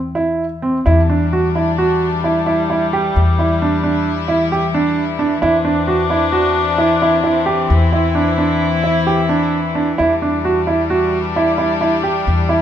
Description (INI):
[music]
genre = contemporary instrumental, chamber music in an uneven meter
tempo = 132 BPM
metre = 5/4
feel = straight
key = E minor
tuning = A4 = 440 Hz
[part]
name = upright bass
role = bass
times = 0.0-12.6 s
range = E2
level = -20 LUFS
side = left 1 dB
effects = none
[part]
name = warm grand piano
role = arpeggios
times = 0.2-12.6 s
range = C4 to G4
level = -16 LUFS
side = right 3 dB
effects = none
[part]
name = rich chamber string section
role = sustained chords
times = 0.9-12.6 s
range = E3 to E4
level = -19 LUFS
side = left 5 dB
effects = none
[sound]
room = moderate recital hall reverb, RT60 1.5 s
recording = none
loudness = -14 LUFS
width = side -10 dB against mid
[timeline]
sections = 0.9-12.6 A section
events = none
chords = 0.0 C/E; 0.9 Em7; 5.4 Cadd9/E; 10.0 Em7